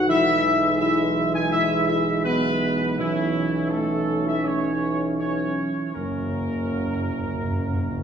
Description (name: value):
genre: classical, ceremonial fanfare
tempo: 81 BPM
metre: 4/4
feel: straight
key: unclear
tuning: A4 = 440 Hz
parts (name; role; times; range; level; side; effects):
- dark trumpet section; melody; 0.0-8.0 s; E4 to G#5; -26 LUFS; equal; none
- bright trombone section; sustained chords; 0.0-8.0 s; E3 to C#4; -28 LUFS; right 3 dB; none
- mellow French horn section; sustained chords; 0.0-8.0 s; E3 to G#4; -26 LUFS; left 2 dB; none
- warm tuba; bass; 0.0-8.0 s; F#1 to B1; -27 LUFS; right 2 dB; none
- timpani; percussion; 6.0-8.0 s; F#2; -29 LUFS; equal; none
room: wet recital hall reverb, RT60 1.6 s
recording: recorded in a church or concert hall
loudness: -21 LUFS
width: side -8 dB against mid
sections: 0.0-8.0 A section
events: timpani fill 5.9-8.0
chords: 0.1 E/B; 3.0 B9sus4; 5.9 F#